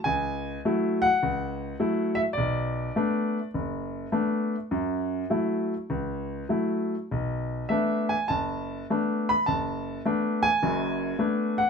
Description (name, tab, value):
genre	solo jazz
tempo	103 BPM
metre	4/4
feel	swing 69% on 8ths, rubato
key	unclear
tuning	A4 = 439 Hz
part	warm grand piano	solo	0.0-11.7 s	F#1 to B5	-25 LUFS	left 1 dB	none
room	moderate studio reverb, RT60 0.8 s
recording	minimal, uncompressed stereo recording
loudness	-25 LUFS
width	side -6 dB against mid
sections	0.0-11.7 A section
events	none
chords	0.0 F#m7; 2.4 Bm7; 4.7 F#m7; 7.1 Bm7